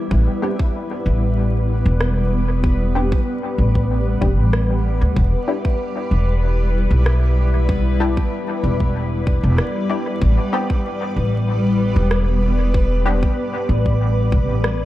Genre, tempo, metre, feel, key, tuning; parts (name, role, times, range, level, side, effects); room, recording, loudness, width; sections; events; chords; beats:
ambient dub; 95 BPM; 4/4; swing 53% on 16ths; A4 = 440 Hz
granular cloud pad; sustained chords; 0.0-14.8 s; G3 to D5; -23 LUFS; left 1 dB; built-in reverb
bubbling stepped-filter texture; texture; 0.0-14.8 s; B3 to B4; -29 LUFS; left 1 dB; chorus, built-in reverb
upright bass; bass; 0.1-14.8 s; E1 to D2; -17 LUFS; equal
electronic kick drum; drums; 0.1-14.5 s; -20 LUFS; equal; studio reverb
filtered dub chord stab; stabs; 0.4-13.2 s; B3 to G4; -27 LUFS; left 2 dB; ensemble chorus, dub echo
electronic rim click; drums; 2.0-14.8 s; -28 LUFS; equal; studio reverb, dub echo
light reverb; dark, warm production, vinyl crackle; -16 LUFS; side -15 dB against mid
0.0-14.8 A section
0.1 A9sus4; 5.2 Em7; 10.2 A9sus4
| 0.11 0.74 1.38 2.01 | 2.64 3.27 3.90 4.53 | 5.17 5.80 6.43 7.06 | 7.69 8.32 8.95 9.59 | 10.22 10.85 11.48 12.11 | 12.74 13.38 14.01 14.64